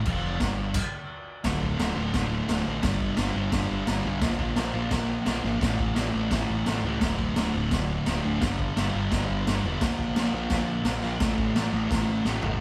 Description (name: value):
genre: garage rock duo or trio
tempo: 172 BPM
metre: 4/4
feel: straight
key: unclear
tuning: A4 = 439 Hz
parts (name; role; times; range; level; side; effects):
- fuzz guitar; riff; 0.0-12.6 s; D2 to Bb3; -30 LUFS; equal; distortion
- growling picked electric bass; bass; 0.0-12.6 s; D1 to C#2; -35 LUFS; equal; overdrive
- raw garage drum kit; drums; 0.1-12.5 s; crash cymbal, kick drum, snare drum, toms; -31 LUFS; equal; none
room: moderate studio reverb, RT60 0.9 s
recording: band playing live in one room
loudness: -27 LUFS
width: mono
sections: 0.0-1.4 A section; 1.4-12.6 B section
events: stop 0.7-1.4; drum fill 12.3-12.6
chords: 0.0 N.C.; 1.4 D5; 2.8 G; 4.2 Bb5; 5.6 A5; 7.0 D5; 8.4 G5; 9.8 Bb5; 11.2 A5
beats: | 0.06 0.40 0.75 1.10 | 1.44 1.79 2.14 2.48 | 2.83 3.18 3.52 3.87 | 4.22 4.57 4.92 5.26 | 5.61 5.96 6.31 6.66 | 7.01 7.36 7.71 8.06 | 8.41 8.76 9.11 9.46 | 9.81 10.16 10.51 10.86 | 11.21 11.55 11.90 12.25